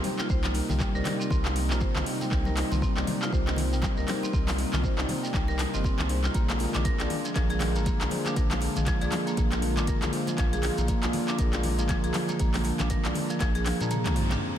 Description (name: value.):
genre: afro house.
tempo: 119 BPM.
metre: 4/4.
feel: swing 58% on 16ths.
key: unclear.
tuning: A4 = 439 Hz.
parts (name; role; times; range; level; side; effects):
warm analog pad; sustained chords; 0.0-14.6 s; C3 to G4; -33 LUFS; equal; chorus, sidechain pumping.
bell-like tine electric piano; stabs; 0.0-14.6 s; C4 to D5; -36 LUFS; left 2 dB; lush chorus, sidechain pumping, analog delay.
deep house drum kit; drums; 0.0-14.4 s; handclaps, hi-hat, toms; -33 LUFS; equal; overdrive.
congas; percussion; 0.0-14.4 s; none; -37 LUFS; left 2 dB; none.
marimba with medium hard mallets; arpeggios; 0.2-14.6 s; F3 to C5; -33 LUFS; right 1 dB; sidechain pumping, low-pass filter, analog delay.
shekere; percussion; 0.2-14.4 s; none; -43 LUFS; right 3 dB; none.
warm sub bass; bass; 0.3-14.4 s; G1 to Bb2; -29 LUFS; equal; tube saturation, sidechain pumping.
electronic kick drum; drums; 0.3-13.5 s; none; -28 LUFS; equal; overdrive.
room: moderate huge ambient reverb, RT60 6.2 s.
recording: dreamy mix soaked in reverb.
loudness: -24 LUFS.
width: side -10 dB against mid.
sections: 0.0-14.4 A section.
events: drum fill 13.7-14.4; kick drops out 13.9-14.4; band accent 14.0.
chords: 0.0 Cm7; 6.3 Bb7.